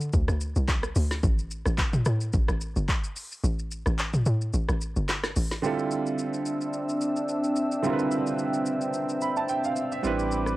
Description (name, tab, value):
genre	amapiano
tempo	109 BPM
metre	4/4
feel	swing 55% on 16ths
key	D dorian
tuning	A4 = 440 Hz
part	tight log drum bass	bass	0.0-5.6 s	G1 to D3	-26 LUFS	equal	none
part	deep house drum kit	drums	0.0-10.6 s	handclaps, hi-hat, kick drum, rim click, shaker, snare drum, toms	-28 LUFS	equal	none
part	clear grand piano	accompaniment	5.6-10.6 s	D3 to B5	-28 LUFS	right 4 dB	cassette tape
part	warm analog pad	sustained chords	5.6-10.6 s	C4 to E6	-28 LUFS	left 1 dB	chorus, sidechain pumping, cassette tape
part	round analog bass	bass	10.0-10.6 s	A1	-31 LUFS	equal	none
room	light reverb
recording	home recording on cassette, vinyl crackle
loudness	-24 LUFS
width	side -17 dB against mid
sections	0.0-5.6 A section; 5.6-10.6 B section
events	drop 0.0-5.6; kick muted 3.4-5.6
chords	0.0 Csus2; 1.2 N.C.; 5.6 Dm11; 10.0 Am11